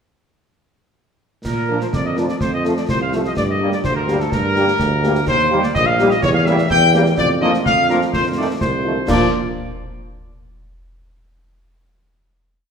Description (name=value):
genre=military-style march for wind band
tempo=126 BPM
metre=2/4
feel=straight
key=Bb major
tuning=A4 = 440 Hz
part: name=mellow trumpet section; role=melody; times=1.4-9.3 s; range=A4 to G5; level=-19 LUFS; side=left 1 dB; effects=none
part: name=clear tuba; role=bass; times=1.4-9.3 s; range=Bb1 to Bb2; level=-20 LUFS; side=right 2 dB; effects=none
part: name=concert snare drum, clash cymbals and concert bass drum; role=drums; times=1.4-9.3 s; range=none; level=-25 LUFS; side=equal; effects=none
part: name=warm French horn section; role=accompaniment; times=1.7-9.3 s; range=A3 to Bb4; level=-25 LUFS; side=left 4 dB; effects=none
part: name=warm trombone section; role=sustained chords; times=1.7-9.3 s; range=Eb3 to D4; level=-24 LUFS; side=right 1 dB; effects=none
room=wet recital hall reverb, RT60 1.6 s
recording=minimal, uncompressed stereo recording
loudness=-15 LUFS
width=side -6 dB against mid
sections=1.5-9.1 A section; 9.1-10.0 final chord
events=none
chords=1.5 Bb; 2.4 F; 3.4 Gm; 5.3 Eb; 6.2 Edim7; 7.2 Bb/F; 8.1 F7; 9.1 Bb